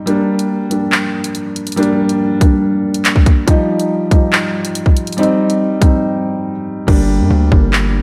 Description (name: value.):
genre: hip hop, drill.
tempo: 141 BPM.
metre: 4/4.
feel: half-time.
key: G minor.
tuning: A4 = 438 Hz.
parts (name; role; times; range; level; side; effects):
felt-muted upright piano; accompaniment; 0.0-8.0 s; F3 to Eb4; -17 LUFS; equal; low-pass filter.
drill drum kit; drums; 0.1-7.8 s; crash cymbal, handclaps, hi-hat, kick drum; -15 LUFS; equal; none.
hard-hitting 808-style bass; bass; 6.9-8.0 s; G1 to G2; -16 LUFS; equal; none.
room: moderate lush hall reverb, RT60 2.3 s.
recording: dreamy mix soaked in reverb.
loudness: -14 LUFS.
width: mono.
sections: 0.1-6.9 A section; 6.9-8.0 B section.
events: break 6.0-6.9; hi-hats muted 6.9-8.0.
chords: 0.1 Gm; 3.5 Ebadd9; 5.2 Cm; 6.9 Gm.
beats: | 0.07 0.50 0.92 1.35 | 1.77 2.20 2.62 3.05 | 3.48 3.90 4.33 4.75 | 5.18 5.60 6.03 6.46 | 6.88 7.31 7.73.